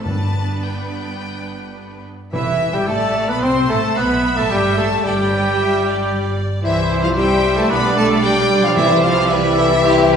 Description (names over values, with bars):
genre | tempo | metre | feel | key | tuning
quick classical-period movement for symphony orchestra | 112 BPM | 4/4 | rubato | unclear | A4 = 440 Hz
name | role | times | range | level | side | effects
clear chamber violin section | second line | 0.0-10.2 s | G4 to E5 | -26 LUFS | equal | none
rich chamber viola section | accompaniment | 0.0-10.2 s | C3 to E4 | -24 LUFS | equal | none
clear chamber double bass section | bass | 0.0-10.2 s | E1 to C2 | -25 LUFS | right 2 dB | none
rich symphonic cello section | bass | 0.0-10.2 s | G2 to C4 | -24 LUFS | right 2 dB | none
rich chamber violin section | melody | 0.1-10.2 s | E5 to C6 | -25 LUFS | left 3 dB | none
timpani | percussion | 0.1-3.1, 8.8-9.5 s | G2 to C3 | -25 LUFS | equal | none
bright clarinet | second line | 2.3-10.2 s | E4 to C5 | -24 LUFS | equal | none
large flute ensemble | second line | 2.3-10.2 s | E5 to C6 | -23 LUFS | right 1 dB | none
warm oboe | second line | 2.3-10.2 s | E4 to D5 | -24 LUFS | right 1 dB | none
warm bassoon | accompaniment | 2.3-10.2 s | E3 to C4 | -24 LUFS | equal | none
mellow French horn section | sustained chords | 2.3-10.2 s | E3 to C4 | -23 LUFS | left 5 dB | none
room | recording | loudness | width
wet recital hall reverb, RT60 1.4 s | recorded in a church or concert hall, nothing above 11.0 kHz, faint mains hum | -14 LUFS | side -7 dB against mid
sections
0.0-2.3 A section; 2.3-10.2 A section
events
none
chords
0.1 G; 2.3 Emadd11; 3.4 Amadd9; 4.5 G5; 6.6 C; 7.7 G/B; 8.8 C